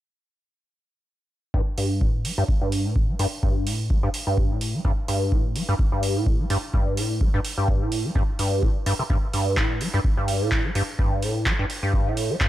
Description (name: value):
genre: acid house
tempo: 127 BPM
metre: 4/4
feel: swing 55% on 16ths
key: unclear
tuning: A4 = 441 Hz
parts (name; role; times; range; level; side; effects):
- liquid acid bass; riff; 1.5-12.5 s; G2 to G3; -24 LUFS; equal; overdrive, wide subtle chorus, sidechain pumping, dub echo
- electronic kick drum; drums; 1.5-12.5 s; none; -23 LUFS; equal; none
- booming analog drum machine; drums; 1.8-12.5 s; handclaps, hi-hat; -30 LUFS; right 2 dB; none
room: light reverb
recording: none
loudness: -21 LUFS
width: side -14 dB against mid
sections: 1.5-12.5 A section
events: filter sweep on acid bass 1.5-12.5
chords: none